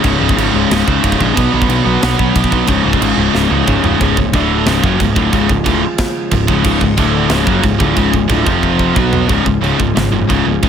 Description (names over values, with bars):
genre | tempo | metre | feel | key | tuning
heavy metal | 182 BPM | 4/4 | straight | C# phrygian dominant | A4 = 439 Hz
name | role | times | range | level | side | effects
chamber organ, sparkling flutes | sustained chords | 0.0-10.7 s | A2 to F#5 | -24 LUFS | right 2 dB | none
scooped high-gain guitar | riff | 0.0-10.7 s | C#2 to B3 | -16 LUFS | right 11 dB | distortion
sludgy distorted guitar | riff | 0.0-10.7 s | C#2 to B3 | -16 LUFS | left 10 dB | overdrive
picked electric bass | bass | 0.0-10.7 s | C#1 to C#2 | -19 LUFS | equal | none
tight metal drum kit | drums | 0.0-10.7 s | china cymbal, crash cymbal, kick drum, snare drum, toms | -18 LUFS | right 1 dB | none
room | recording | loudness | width
light reverb | none | -11 LUFS | side -8 dB against mid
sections
0.0-4.0 A section; 4.0-9.3 B section; 9.3-10.7 C section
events
drum fill 3.3-4.0, 8.6-9.3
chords
0.0 C#; 1.4 Bm; 2.7 C#; 4.3 D5; 4.7 C#; 7.0 D5; 7.3 C#; 8.5 F5; 9.0 B5; 9.3 C#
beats
| 0.04 0.37 0.70 1.03 | 1.36 1.69 2.02 2.35 | 2.68 3.01 3.34 3.67 | 4.00 4.33 4.67 5.00 | 5.33 5.66 5.99 6.32 | 6.65 6.98 7.31 7.64 | 7.97 8.30 8.63 8.96 | 9.30 9.63 9.96 10.29 | 10.63